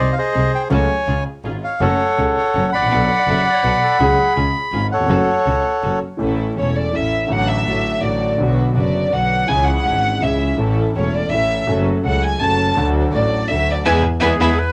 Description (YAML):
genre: tango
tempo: 165 BPM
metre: 3/4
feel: rubato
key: F# minor, A major from 6.2 s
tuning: A4 = 441 Hz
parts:
  - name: bandoneon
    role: melody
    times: 0.0-6.0 s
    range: G#4 to B5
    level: -19 LUFS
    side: equal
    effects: cassette tape
  - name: warm concert grand piano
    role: accompaniment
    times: 0.0-14.5 s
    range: E1 to A4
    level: -23 LUFS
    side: equal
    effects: cassette tape
  - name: clear studio string section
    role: stabs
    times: 0.0-14.5 s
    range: B3 to B4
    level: -31 LUFS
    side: equal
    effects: cassette tape
  - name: clear double bass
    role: bass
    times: 0.0-14.5 s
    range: E1 to E2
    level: -24 LUFS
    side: equal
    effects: none
  - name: warm chamber violin section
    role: second line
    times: 1.6-14.5 s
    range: B4 to A5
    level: -23 LUFS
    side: equal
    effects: cassette tape, plate reverb
  - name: breathy silver concert flute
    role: second line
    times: 3.1-4.7, 14.2-14.7 s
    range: G#4 to F#5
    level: -27 LUFS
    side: equal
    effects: cassette tape
room: wet booth ambience, RT60 0.2 s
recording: home recording on cassette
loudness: -17 LUFS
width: mono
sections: 0.0-6.2 A section; 6.2-14.7 B section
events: violin section solo 6.2-14.7; band accent 13.9-14.7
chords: 0.0 G#/B#; 0.7 F#m/C#; 1.1 C#; 1.8 F#m; 2.9 Bm7; 4.0 C#sus4; 4.4 C#; 5.1 F#m; 6.2 A; 7.3 D/A; 8.4 Bm; 9.5 C#m; 10.6 A; 11.7 F#m; 12.8 D; 13.9 E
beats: 0.35 | 0.71 1.08 1.45 | 1.82 2.19 2.55 | 2.92 3.28 3.65 | 4.01 4.37 4.73 | 5.10 5.47 5.84 | 6.21 6.58 6.95 | 7.31 7.67 8.04 | 8.40 8.76 9.12 | 9.48 9.85 10.22 | 10.58 10.95 11.32 | 11.68 12.05 12.41 | 12.77 13.14 13.50 | 13.86 14.23 14.59